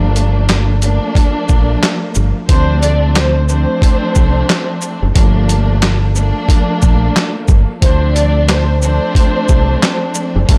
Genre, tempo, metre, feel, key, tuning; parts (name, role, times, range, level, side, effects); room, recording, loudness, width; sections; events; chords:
hip hop, boom-bap hip-hop; 90 BPM; 4/4; swing 59% on 16ths; G minor; A4 = 440 Hz
warm symphonic string section; accompaniment; 0.0-10.6 s; F3 to D4; -20 LUFS; equal; cassette tape, high-pass filter, low-pass filter
deep dub fingered electric bass; bass; 0.0-10.6 s; F#1 to D2; -16 LUFS; equal
boom bap sampler-style drum kit; drums; 0.2-10.6 s; handclaps, hi-hat, kick drum, shaker, snare drum; -15 LUFS; equal
dark studio violin section; melody; 2.5-10.0 s; C5 to D5; -22 LUFS; equal; high-pass filter, low-pass filter, tape echo
little or no reverb; -13 LUFS; mono
0.0-10.6 A section
0.0 Gm7; 2.5 Dm7; 5.2 Gm7; 7.8 Dm7